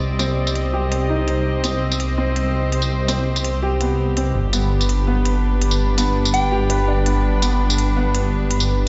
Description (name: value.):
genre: half-time drum and bass.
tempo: 166 BPM.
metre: 4/4.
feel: swing 53% on 16ths, half-time.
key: C harmonic minor.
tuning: A4 = 440 Hz.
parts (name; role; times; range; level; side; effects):
warm studio string section; sustained chords; 0.0-8.9 s; G3 to Eb5; -27 LUFS; equal; low-pass filter.
felt-muted upright piano; arpeggios; 0.0-8.9 s; B3 to C5; -27 LUFS; equal; vintage 12-bit sampler grit, low-pass filter, dub echo.
phased detuned saw bass; bass; 0.0-8.9 s; G1 to C2; -22 LUFS; equal; phaser.
electronic hi-hat and tambourine; drums; 0.2-8.7 s; none; -28 LUFS; equal; low-pass filter on hats, low-pass filter on perc, low-pass filter on snare, low-pass filter on room.
soft synth bell; melody; 6.3-6.8 s; G5; -28 LUFS; equal; chorus, phaser, delay.
room: light reverb, digital ambience.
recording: played on a big sound system in a bare room, large studio reverb, nothing above 7.8 kHz.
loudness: -19 LUFS.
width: mono.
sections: 0.0-8.9 A section.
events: none.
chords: 0.0 Cm; 4.3 G.